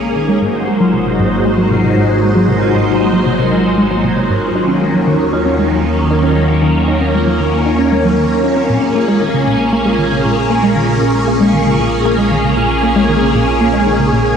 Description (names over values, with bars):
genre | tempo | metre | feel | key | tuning
ambient, sequencer-driven space music | 116 BPM | 4/4 | straight | Bb minor | A4 = 436 Hz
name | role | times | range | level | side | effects
phased string machine | sustained chords | 0.0-14.4 s | Eb3 to C5 | -14 LUFS | equal | ensemble chorus, phaser
vibraphone with medium mallets | arpeggios | 0.0-14.3 s | Ab3 to Bb4 | -21 LUFS | right 1 dB | auto-pan, tape echo
analog drone | bass | 0.0-14.4 s | Ab1 to Eb2 | -20 LUFS | equal | chorus
tight sequenced synth | riff | 0.2-14.2 s | Ab2 to Eb4 | -16 LUFS | equal | chorus, tape echo
room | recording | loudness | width
wet huge ambient reverb, RT60 7.7 s | dreamy mix soaked in reverb | -11 LUFS | side -7 dB against mid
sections
0.0-14.4 A section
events
filter sweep on synth arpeggio sound 0.0-14.4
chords
0.4 Ab7; 4.6 Ebm7; 8.7 Bbm7